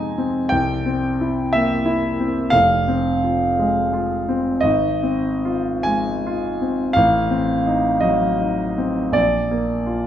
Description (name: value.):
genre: classical, romantic nocturne for solo piano.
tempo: 46-61 BPM (dotted quarters).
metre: 12/8.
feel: rubato.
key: unclear.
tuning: A4 = 441 Hz.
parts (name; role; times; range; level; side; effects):
warm grand piano; solo; 0.0-10.1 s; F1 to Bb5; -17 LUFS; equal; none.
room: moderate recital hall reverb, RT60 1.5 s.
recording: none.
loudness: -17 LUFS.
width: side -10 dB against mid.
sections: 0.0-10.1 A section.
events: none.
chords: 0.0 Fm7; 0.5 C7; 2.5 Fm; 4.7 Fm7/Ab; 7.0 Adim7; 9.2 Bb.